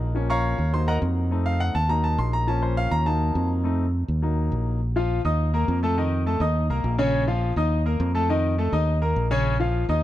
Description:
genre	latin, salsa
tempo	206 BPM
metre	4/4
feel	straight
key	Bb harmonic minor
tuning	A4 = 440 Hz
part	bright concert grand piano	accompaniment	0.0-10.0 s	Db3 to Eb6	-25 LUFS	left 2 dB	none
part	fingered electric bass	bass	0.0-10.0 s	Bb1 to F2	-23 LUFS	equal	none
room	little or no reverb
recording	dark, warm production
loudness	-21 LUFS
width	side -14 dB against mid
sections	0.0-4.8 A section; 4.8-10.0 B section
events	grand piano solo 0.0-4.8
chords	0.1 Bbm; 0.7 Ebm; 1.3 F7; 1.9 Ebm; 2.5 Bbm; 3.1 Ebm; 3.6 F7; 4.2 Ebm; 4.8 Bb5; 5.4 Eb5; 6.0 F7; 6.6 Eb5; 7.1 Bbm; 7.7 Eb5; 8.3 F7; 8.9 Eb5; 9.5 Bbm

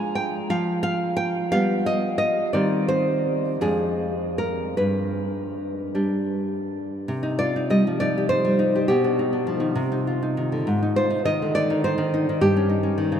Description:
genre	romantic piece for solo classical guitar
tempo	49-72 BPM (dotted quarters)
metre	6/8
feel	rubato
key	C minor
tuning	A4 = 440 Hz
part	nylon-string guitar	solo	0.0-13.2 s	F2 to Ab5	-21 LUFS	equal	none
room	wet cathedral reverb, RT60 7.4 s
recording	in a vast, echoing space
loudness	-21 LUFS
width	side -8 dB against mid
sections	0.0-7.1 A section; 7.1-13.2 B section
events	none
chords	0.0 Ddim/F; 0.5 G7/F; 2.6 Cm/Eb; 3.6 Ddim/F; 4.8 G; 7.1 Cm; 8.9 G7/B; 9.8 Cm; 10.7 Ab; 12.4 Eb7/G

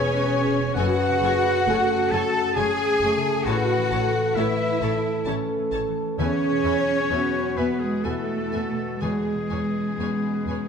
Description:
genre	cinematic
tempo	65 BPM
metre	3/4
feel	uneven beats, rubato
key	F# minor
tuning	A4 = 442 Hz
part	rich studio violin section	melody	0.0-10.6 s	G#5 to A5	-39 LUFS	left 4 dB	none
part	clear clarinet	second line	0.0-10.7 s	G#4 to A5	-32 LUFS	left 2 dB	none
part	clear oboe	second line	0.0-10.7 s	G#4 to A5	-30 LUFS	equal	none
part	rich symphonic violin section	second line	0.0-10.7 s	G#4 to A5	-33 LUFS	left 4 dB	none
part	rich symphonic viola section	accompaniment	0.0-10.6 s	A3 to E5	-36 LUFS	left 1 dB	none
part	warm grand piano	accompaniment	0.0-10.7 s	E2 to B4	-30 LUFS	left 3 dB	none
part	warm French horn section	sustained chords	0.0-10.7 s	A3 to B4	-28 LUFS	left 1 dB	none
part	concert harp	arpeggios	0.0-10.7 s	E2 to G#5	-31 LUFS	left 7 dB	none
part	rich studio double bass section	bass	0.0-10.5 s	E1 to E2	-32 LUFS	right 4 dB	none
part	rich symphonic cello section	bass	0.0-10.7 s	G#3 to A4	-26 LUFS	right 2 dB	none
room	wet recital hall reverb, RT60 1.4 s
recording	none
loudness	-21 LUFS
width	side -6 dB against mid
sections	0.0-10.7 A section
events	none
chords	0.0 C#m7/E; 0.8 F#madd9; 3.5 A; 6.2 Eadd9; 9.0 C#m7/E

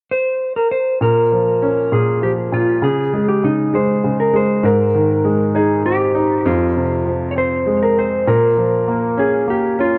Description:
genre	pop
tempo	66 BPM (dotted quarters)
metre	6/8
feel	straight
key	unclear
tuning	A4 = 438 Hz
part	clean lap steel guitar	melody	0.1-10.0 s	Eb4 to Db5	-19 LUFS	equal	tape echo
part	bright concert grand piano	accompaniment	1.0-10.0 s	F2 to Eb4	-20 LUFS	equal	none
room	wet plate reverb, RT60 2.7 s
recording	dark, warm production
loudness	-16 LUFS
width	mono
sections	0.0-1.0 A section; 1.0-10.0 B section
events	none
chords	0.0 N.C.; 1.0 Bbm; 2.8 Db5; 4.6 Ab; 6.5 Fm; 8.3 Bbm

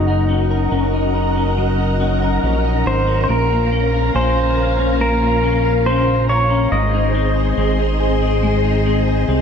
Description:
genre	dream pop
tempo	70 BPM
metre	4/4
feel	straight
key	Eb dorian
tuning	A4 = 440 Hz
part	pedal steel guitar	melody	0.0-9.3 s	Eb4 to Eb5	-21 LUFS	equal	tape echo
part	string machine, cellos	sustained chords	0.0-9.4 s	Db4 to C6	-22 LUFS	right 1 dB	phaser, ensemble chorus
part	clean electric guitar	arpeggios	0.0-9.4 s	Gb3 to Bb4	-21 LUFS	left 4 dB	ensemble chorus, tape echo
part	fat analog bass	bass	0.0-9.4 s	Gb1 to C2	-18 LUFS	right 1 dB	none
part	small celesta	texture	4.1-6.4 s	Ab5	-34 LUFS	left 2 dB	none
room	moderate echo chamber reverb, RT60 2.4 s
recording	echo-heavy mix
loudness	-14 LUFS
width	side -7 dB against mid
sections	0.0-9.4 A section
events	none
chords	0.0 Ebm7/Gb; 3.3 Bbm; 6.7 Ab

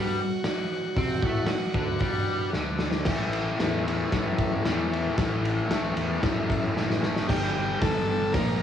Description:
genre	garage rock duo or trio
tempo	114 BPM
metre	4/4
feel	straight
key	unclear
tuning	A4 = 440 Hz
part	overdriven combo organ	melody	0.0-2.5, 7.3-8.6 s	F#4 to Bb4	-30 LUFS	right 1 dB	none
part	fuzz guitar	riff	0.0-8.6 s	G2 to C4	-28 LUFS	left 1 dB	distortion, cassette tape
part	fuzz fingered electric bass	bass	0.0-8.6 s	F#1 to C3	-31 LUFS	left 1 dB	overdrive
part	raw garage drum kit	drums	0.4-8.5 s	crash cymbal, hi-hat, kick drum, ride cymbal, snare drum	-28 LUFS	left 1 dB	none
room	small room ambience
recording	home recording on cassette, studio reverb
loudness	-24 LUFS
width	side -9 dB against mid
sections	0.0-3.1 A section; 3.1-7.3 B section; 7.3-8.6 C section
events	drum fill 2.5-3.1, 6.7-7.3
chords	0.0 D; 3.1 A5; 7.3 G5

